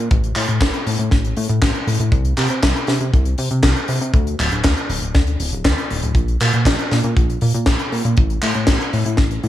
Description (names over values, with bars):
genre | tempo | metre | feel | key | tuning
italo disco | 119 BPM | 4/4 | straight | unclear | A4 = 440 Hz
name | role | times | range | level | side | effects
chorused synth bass | bass | 0.0-9.5 s | D1 to C3 | -19 LUFS | equal | none
kick drum | drums | 0.1-9.3 s | none | -17 LUFS | equal | studio reverb
tight funk drum kit | drums | 0.1-9.5 s | handclaps, hi-hat, snare drum | -20 LUFS | left 1 dB | studio reverb, gated reverb
room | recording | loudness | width
little or no reverb | none | -15 LUFS | side -13 dB against mid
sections
0.0-9.5 A section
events
none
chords
none